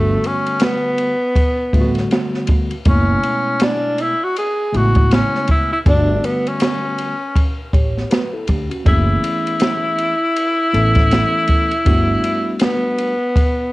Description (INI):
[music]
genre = hip hop, jazz-hop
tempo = 80 BPM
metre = 4/4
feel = swing 60% on 16ths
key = unclear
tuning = A4 = 440 Hz
[part]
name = breathy tenor saxophone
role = melody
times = 0.0-13.7 s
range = A3 to G#4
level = -18 LUFS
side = equal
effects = cassette tape
[part]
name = mellow tine electric piano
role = accompaniment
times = 0.0-13.1 s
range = B2 to C#5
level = -22 LUFS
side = equal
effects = medium stereo tremolo, cassette tape
[part]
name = upright bass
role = bass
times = 0.0-12.2 s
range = F#1 to D2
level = -19 LUFS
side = equal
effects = none
[part]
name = open jazz drum kit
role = drums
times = 0.2-13.6 s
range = hi-hat, kick drum, ride cymbal, snare drum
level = -17 LUFS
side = equal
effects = cassette tape
[sound]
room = light reverb, small room ambience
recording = home recording on cassette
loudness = -14 LUFS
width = side -20 dB against mid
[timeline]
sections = 0.0-13.7 A section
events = none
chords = 0.0 Gmaj9; 2.9 F#m11 (rootless); 5.9 Gmaj9; 8.9 F#m11; 11.9 Gmaj9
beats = 0.61 1.36 2.11 | 2.86 3.61 4.36 5.11 | 5.86 6.61 7.36 8.11 | 8.86 9.61 10.36 11.11 | 11.86 12.61 13.36